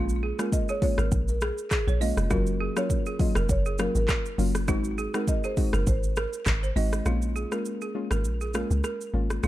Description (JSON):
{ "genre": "afrobeats", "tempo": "101 BPM", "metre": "4/4", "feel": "swing 55% on 16ths", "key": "Bb minor", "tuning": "A4 = 443 Hz", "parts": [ { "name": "soft round pluck", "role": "accompaniment", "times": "0.0-9.5 s", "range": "Gb3 to Gb4", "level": "-31 LUFS", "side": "left 2 dB", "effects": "chorus" }, { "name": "deep log drum bass", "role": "bass", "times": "0.0-9.5 s", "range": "F1 to Db2", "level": "-26 LUFS", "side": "equal", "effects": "none" }, { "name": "afro-pop drum kit", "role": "drums", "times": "0.1-9.5 s", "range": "handclaps, hi-hat, kick drum, rim click, shaker", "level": "-28 LUFS", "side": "equal", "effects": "none" }, { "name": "balafon", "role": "riff", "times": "0.2-9.5 s", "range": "F4 to Eb5", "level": "-34 LUFS", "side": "right 5 dB", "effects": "ping-pong delay" }, { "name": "buzzing marimba with medium mallets", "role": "melody", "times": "0.5-6.7 s", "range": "Ab4 to Eb5", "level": "-33 LUFS", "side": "equal", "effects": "ping-pong delay" } ], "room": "little or no reverb", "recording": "dark, warm production", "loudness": "-24 LUFS", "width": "side -15 dB against mid", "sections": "0.0-7.1 A section; 7.1-9.5 B section", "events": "kick muted 7.1-9.5", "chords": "0.0 Bbm7; 2.3 Gbmaj7; 4.7 Ab7; 7.1 Bbm7", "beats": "0.52 1.12 1.71 | 2.31 2.90 3.49 4.09 | 4.68 5.28 5.87 6.46 | 7.06 7.65 8.25 8.84 | 9.43" }